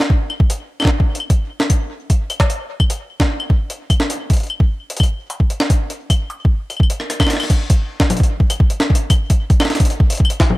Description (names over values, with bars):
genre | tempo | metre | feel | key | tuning
IDM | 150 BPM | 4/4 | straight | none | none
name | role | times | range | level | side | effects
jungle sampler-style drum kit | drums | 0.0-10.6 s | claves, congas, crash cymbal, hi-hat, rim click, snare drum | -20 LUFS | equal | overdrive
electronic kick drum | drums | 0.1-10.5 s | none | -14 LUFS | equal | none
room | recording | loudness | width
little or no reverb | none | -14 LUFS | side -19 dB against mid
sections
0.0-7.4 A section; 7.4-10.6 B section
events
drum fill 7.0-7.4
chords
none